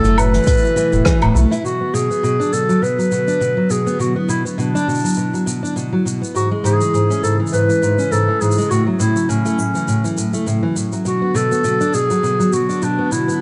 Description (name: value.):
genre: folktronica.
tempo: 102 BPM.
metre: 4/4.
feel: swing 56% on 16ths.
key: B dorian.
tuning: A4 = 440 Hz.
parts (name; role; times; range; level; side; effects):
dark clarinet; melody; 0.0-13.4 s; C#4 to B4; -22 LUFS; equal; digital delay.
warm analog pad; sustained chords; 0.0-13.4 s; B2 to F#4; -25 LUFS; equal; chorus.
fingerpicked steel-string acoustic guitar; arpeggios; 0.0-13.4 s; G#2 to E4; -21 LUFS; equal; low-pass filter.
warm sub bass; bass; 0.0-1.5 s; D1 to B1; -18 LUFS; equal; tube saturation.
jazz brush drum kit; drums; 0.0-13.4 s; hi-hat, rim click, shaker, woodblock; -29 LUFS; equal; none.
electronic kick drum; drums; 0.5-1.2 s; none; -20 LUFS; equal; overdrive.
room: light reverb, studio reverb.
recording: nothing above 10.4 kHz.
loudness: -17 LUFS.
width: mono.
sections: 0.0-1.6 A section; 1.6-13.4 B section.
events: filter sweep on analog synth pad 1.6-13.4.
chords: 0.5 Esus4; 1.6 Bm; 6.4 C#m; 8.7 F#m7; 11.1 Bm.